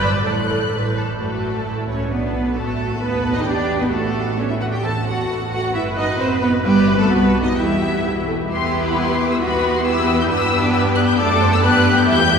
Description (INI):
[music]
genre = quick classical-period movement for string orchestra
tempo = 133 BPM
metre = 2/4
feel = rubato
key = D major, E minor from 4.8 s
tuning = A4 = 440 Hz
[part]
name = clear studio violin section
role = melody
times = 0.0-12.4 s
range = A3 to G6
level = -24 LUFS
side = left 5 dB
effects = none
[part]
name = rich studio violin section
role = second line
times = 0.0-12.4 s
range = F#4 to A5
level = -24 LUFS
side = left 1 dB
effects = none
[part]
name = rich studio viola section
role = accompaniment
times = 0.0-12.4 s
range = G3 to B4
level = -22 LUFS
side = left 1 dB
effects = none
[part]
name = rich studio cello section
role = bass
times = 0.0-12.4 s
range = G2 to B4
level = -21 LUFS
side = right 1 dB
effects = none
[part]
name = rich studio double bass section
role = bass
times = 0.0-12.4 s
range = F#1 to G2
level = -24 LUFS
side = right 3 dB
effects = none
[sound]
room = wet cathedral reverb, RT60 6.7 s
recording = heard from further back in the room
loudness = -16 LUFS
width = side -6 dB against mid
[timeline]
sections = 0.0-1.2 A section; 1.2-8.5 B section; 8.5-12.4 C section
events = none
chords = 0.3 D/A (rootless); 1.2 F#m/A; 1.7 A; 2.1 D; 3.0 B7/D#; 3.4 Em7; 3.9 F#m/A; 4.4 A; 4.8 F#m/A; 5.7 Em/G (rootless); 6.2 B5/F#; 6.6 Em/G (rootless); 7.1 B7; 7.6 Em; 9.4 B/D#; 9.9 Em; 10.3 G; 11.2 D/F#; 11.6 G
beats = | 0.26 0.73 | 1.20 1.66 | 2.10 2.55 | 3.00 3.45 | 3.90 4.37 | 4.83 5.29 | 5.74 6.19 | 6.64 7.09 | 7.55 8.03 | 8.50 8.95 | 9.40 9.85 | 10.30 10.74 | 11.19 11.64 | 12.09